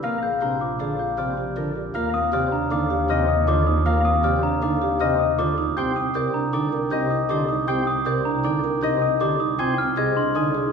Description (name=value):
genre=classical, minimalist pattern music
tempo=157 BPM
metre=5/4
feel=straight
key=unclear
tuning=A4 = 440 Hz
part: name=concert harp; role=melody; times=0.0-10.7 s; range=Bb4 to Ab5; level=-25 LUFS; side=left 9 dB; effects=none
part: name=chamber organ, sparkling flutes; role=accompaniment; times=0.0-10.5 s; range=C3 to C4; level=-28 LUFS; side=equal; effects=none
part: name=glockenspiel with rubber mallets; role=arpeggios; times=0.0-10.6 s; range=Bb5 to Ab6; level=-26 LUFS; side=right 2 dB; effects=none
part: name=marimba with soft mallets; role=arpeggios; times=0.0-10.7 s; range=C4 to Bb4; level=-27 LUFS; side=right 6 dB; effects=none
part: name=clear studio double bass section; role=bass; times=0.0-10.7 s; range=Bb1 to Eb2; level=-27 LUFS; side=right 2 dB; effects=none
room=wet recital hall reverb, RT60 1.5 s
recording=heard from further back in the room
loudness=-20 LUFS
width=side -6 dB against mid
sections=0.0-1.9 A section; 1.9-10.7 B section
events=none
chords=0.0 Bb9; 1.9 Eb69; 5.8 Cm7; 9.6 Fm7/C